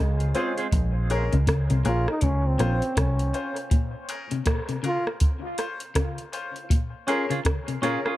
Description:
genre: dub reggae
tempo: 80 BPM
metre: 4/4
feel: swing 61% on 16ths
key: Bb minor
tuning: A4 = 440 Hz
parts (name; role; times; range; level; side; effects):
- breathy trombone; melody; 0.0-5.1 s; Ab3 to F4; -31 LUFS; right 1 dB; dub echo
- electric guitar at the edge of break-up; riff; 0.0-8.0 s; Bb2 to Db3; -31 LUFS; left 5 dB; dub echo
- vintage muted picked electric bass; bass; 0.0-3.3 s; Bb1 to Db2; -23 LUFS; equal; none
- soft vintage rhythm box; drums; 0.2-8.2 s; hi-hat, kick drum, rim click; -25 LUFS; equal; none
- clean electric guitar; accompaniment; 0.3-0.7, 7.1-8.1 s; C4 to Ab4; -30 LUFS; right 3 dB; wide subtle chorus, dub echo
- clear upright piano; stabs; 0.3-8.1 s; Db4 to C5; -32 LUFS; left 3 dB; high-pass filter, dub echo
room: light reverb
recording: none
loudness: -22 LUFS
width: side -15 dB against mid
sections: 0.0-8.2 A section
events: break 3.7-8.2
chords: 0.0 Dbmaj7; 0.7 Bbm7; 2.2 Dbmaj7; 3.7 Bbm7; 5.2 Dbmaj7; 6.7 Bbm7

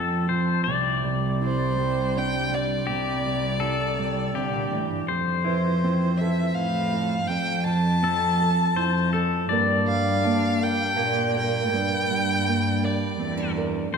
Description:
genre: acoustic folk-pop ballad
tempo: 81 BPM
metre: 3/4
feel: straight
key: F major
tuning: A4 = 440 Hz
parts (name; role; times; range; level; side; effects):
- pedal steel guitar; second line; 0.0-14.0 s; G4 to D5; -29 LUFS; left 6 dB; none
- nylon-string guitar; accompaniment; 0.0-14.0 s; F2 to Bb4; -27 LUFS; right 3 dB; none
- warm cello; bass; 0.0-14.0 s; C2 to C3; -27 LUFS; left 1 dB; none
- warm violin; melody; 1.4-13.6 s; C5 to A5; -27 LUFS; left 1 dB; none
- electric guitar through a small old amp; arpeggios; 5.4-6.8, 10.2-12.3 s; E3 to D4; -31 LUFS; right 6 dB; tremolo
room: wet concert hall reverb, RT60 2.3 s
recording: recorded in a church or concert hall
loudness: -21 LUFS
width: side -6 dB against mid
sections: 0.0-5.1 A section; 5.1-14.0 B section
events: none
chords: 0.0 F; 0.7 Cadd9; 5.1 Fmaj7; 9.5 Gm

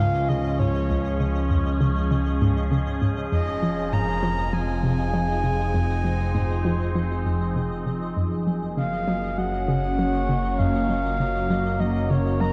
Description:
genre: ambient, sequencer-driven space music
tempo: 99 BPM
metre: 4/4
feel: straight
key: F phrygian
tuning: A4 = 438 Hz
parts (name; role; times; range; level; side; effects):
- breathy flute-like synth lead; melody; 0.0-12.5 s; Db5 to Bb5; -32 LUFS; equal; chorus, delay
- evolving wavetable pad; sustained chords; 0.0-12.5 s; F3 to Db5; -29 LUFS; equal; phaser, built-in reverb
- hollow square pluck; riff; 0.0-12.5 s; Db2 to Gb3; -28 LUFS; equal; chorus, phaser, delay
- fat analog bass; bass; 0.0-12.5 s; F1 to Db2; -30 LUFS; equal; none
- pulsing gated texture; texture; 0.0-12.5 s; Eb5; -43 LUFS; equal; chorus, built-in reverb
room: wet plate reverb, RT60 2.6 s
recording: dark, warm production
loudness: -24 LUFS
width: mono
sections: 0.0-12.5 A section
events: none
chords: 0.0 Db; 3.3 Fm7; 8.2 Gb

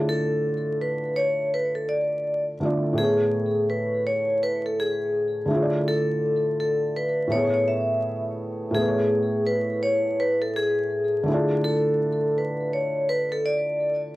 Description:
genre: hip hop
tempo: 83 BPM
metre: 4/4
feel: swing 62% on 16ths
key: unclear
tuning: A4 = 440 Hz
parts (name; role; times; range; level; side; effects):
- vibraphone with hard mallets; melody; 0.0-14.0 s; G#4 to E5; -23 LUFS; equal; cassette tape
- felt-muted upright piano; accompaniment; 0.0-14.2 s; A2 to D5; -27 LUFS; equal; cassette tape
room: moderate studio reverb, RT60 0.6 s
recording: home recording on cassette, vinyl crackle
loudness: -22 LUFS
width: side -17 dB against mid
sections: 0.0-8.7 A section; 8.7-14.2 B section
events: none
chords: 0.0 Dmadd9; 3.0 Amaj7; 5.5 Dmadd9; 7.3 Amaj9; 11.3 Dmadd9

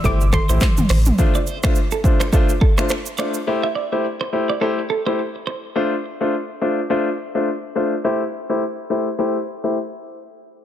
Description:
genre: afrobeats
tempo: 105 BPM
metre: 4/4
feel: swing 58% on 16ths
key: A minor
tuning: A4 = 438 Hz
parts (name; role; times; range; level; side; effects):
- soft round pluck; melody; 0.0-0.9 s; C6 to D6; -29 LUFS; left 1 dB; chorus, digital delay
- clear baby grand piano; accompaniment; 0.0-9.8 s; A3 to C5; -21 LUFS; left 2 dB; low-pass filter
- clean electric guitar; riff; 0.0-5.6 s; A4 to E5; -27 LUFS; right 6 dB; low-pass filter, digital delay
- warm sub bass; bass; 0.0-1.1 s; G1 to A1; -16 LUFS; equal; none
- deep house drum kit; drums; 0.0-3.5 s; finger snaps, handclaps, hi-hat, kick drum, rim click, shaker, toms; -17 LUFS; equal; soft clipping on snare
- congas; percussion; 0.0-0.9 s; none; -26 LUFS; left 2 dB; none
room: light reverb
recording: dense, heavily limited modern master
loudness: -17 LUFS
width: side -10 dB against mid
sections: 0.0-1.2 A section; 1.2-10.3 B section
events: filter sweep 1.2-10.3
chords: 0.0 Am7; 1.2 Dm7; 3.5 Am7; 5.8 Dm7; 8.0 Am7

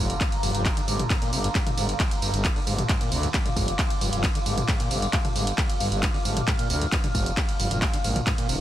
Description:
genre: driving peak-time techno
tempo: 134 BPM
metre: 4/4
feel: straight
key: G phrygian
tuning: A4 = 440 Hz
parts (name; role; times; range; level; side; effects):
- screaming distorted acid line; riff; 0.0-8.6 s; G2 to D3; -31 LUFS; equal; distortion, wide subtle chorus, sidechain pumping
- growling FM bass; bass; 0.0-8.6 s; D1 to D2; -29 LUFS; equal; sidechain pumping
- overtone-sweeping drone; drone; 0.0-8.6 s; G2 to D3; -37 LUFS; right 1 dB; chorus, built-in reverb, sidechain pumping
- granular cloud pad; texture; 0.0-8.6 s; F5 to F6; -33 LUFS; equal; built-in reverb, sidechain pumping
- punchy analog drum machine; drums; 0.1-8.6 s; handclaps, hi-hat, ride cymbal, tambourine, toms; -28 LUFS; right 1 dB; none
- electronic kick drum; drums; 0.2-8.4 s; none; -26 LUFS; equal; none
room: light reverb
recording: dense, heavily limited modern master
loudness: -22 LUFS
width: side -12 dB against mid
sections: 0.0-8.6 A section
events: none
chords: 0.0 G5

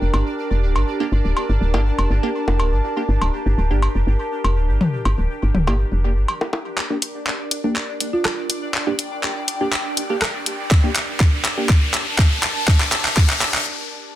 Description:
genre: minimal techno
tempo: 122 BPM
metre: 4/4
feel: straight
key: G minor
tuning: A4 = 441 Hz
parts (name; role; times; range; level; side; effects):
- woody FM bass; bass; 0.0-6.2 s; D1 to G1; -18 LUFS; equal; sidechain pumping
- pulsing gated texture; texture; 0.0-13.7 s; D4 to D5; -32 LUFS; right 2 dB; chorus, built-in reverb, sidechain pumping
- warbly tape-like pad; texture; 0.0-13.7 s; D4 to A5; -28 LUFS; equal; chorus, built-in reverb, phaser, sidechain pumping
- electronic cowbell, bongos and toms; percussion; 0.1-6.6 s; none; -24 LUFS; left 1 dB; small room reverb, tape echo
- wavetable chord stab; stabs; 1.0-11.7 s; Bb3 to G4; -26 LUFS; right 2 dB; tape echo
- garage drum kit; drums; 6.8-13.6 s; handclaps, hi-hat, rim click; -21 LUFS; equal; soft clipping on snare, low-pass filter on snare, small room reverb, low-pass filter on hats
- riser; sound effects; 9.1-13.7 s; none; -27 LUFS; left 2 dB; none
- folk marimba with soft mallets; melody; 8.1-8.5 s; F4; -25 LUFS; right 2 dB; tape echo
- electronic kick drum; drums; 10.7-13.3 s; none; -14 LUFS; equal; small room reverb
room: light reverb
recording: dense, heavily limited modern master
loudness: -17 LUFS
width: side -13 dB against mid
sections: 0.0-6.8 A section; 6.8-14.2 B section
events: build-up 6.8-14.2; drum fill 6.8-13.7; filter sweep on synth stab 6.8-14.2; riser 9.1-13.7; break 13.7-14.2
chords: 0.0 Gm

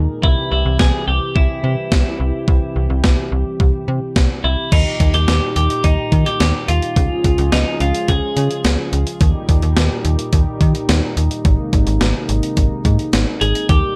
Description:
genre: synth-pop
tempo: 107 BPM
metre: 4/4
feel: straight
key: Ab major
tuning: A4 = 440 Hz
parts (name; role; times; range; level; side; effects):
- warm analog pad; sustained chords; 0.0-14.0 s; Bb2 to Bb4; -26 LUFS; equal; chorus
- slap-like FM bass; bass; 0.0-13.8 s; Ab1 to Eb3; -20 LUFS; equal; none
- twelve-string electric guitar; melody; 0.2-8.6, 13.4-14.0 s; Eb4 to Ab4; -24 LUFS; equal; tape echo
- gated 80s digital drum machine; drums; 0.2-13.8 s; crash cymbal, hi-hat, kick drum, snare drum; -19 LUFS; equal; gated reverb, gated reverb snare
room: light reverb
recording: none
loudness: -17 LUFS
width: mono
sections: 0.0-4.7 A section; 4.7-14.0 B section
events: none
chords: 0.2 C; 4.7 Eb; 7.0 Db; 9.2 Eb; 11.4 Abadd9

